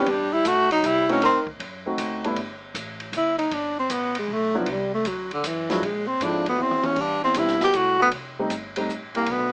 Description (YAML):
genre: jazz, small-group swing and bop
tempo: 156 BPM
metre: 3/4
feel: swing 67% on 8ths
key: G major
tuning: A4 = 441 Hz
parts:
  - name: warm tenor saxophone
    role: melody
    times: 0.0-9.5 s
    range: D3 to G4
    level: -24 LUFS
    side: equal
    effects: none
  - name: breathy baritone saxophone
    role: second line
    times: 0.0-1.5, 6.2-9.5 s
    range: C2 to A3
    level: -30 LUFS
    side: equal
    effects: none
  - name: warm concert grand piano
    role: accompaniment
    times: 0.0-2.4, 4.5-8.9 s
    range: G2 to F#4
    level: -29 LUFS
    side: equal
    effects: none
  - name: upright bass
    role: bass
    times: 0.0-9.5 s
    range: F1 to Bb2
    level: -44 LUFS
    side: equal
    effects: none
  - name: open jazz drum kit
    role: drums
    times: 0.1-9.4 s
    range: crash cymbal, hi-hat, kick drum, ride cymbal, snare drum, toms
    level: -35 LUFS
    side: equal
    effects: none
room: light reverb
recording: small speaker sound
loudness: -24 LUFS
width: mono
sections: 0.0-2.4 A section; 2.4-9.5 B section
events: drum fill 6.6-7.0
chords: 0.1 Amadd9; 1.2 D7b9; 2.4 Gsus2; 3.5 Gadd9; 4.7 Cadd9; 5.8 Bb7#11; 7.0 Am9; 8.1 F9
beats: | 0.07 0.45 0.84 | 1.22 1.60 1.99 | 2.37 2.75 3.14 | 3.52 3.91 4.29 | 4.67 5.06 5.44 | 5.83 6.21 6.59 | 6.98 7.36 7.75 | 8.13 8.51 8.90 | 9.28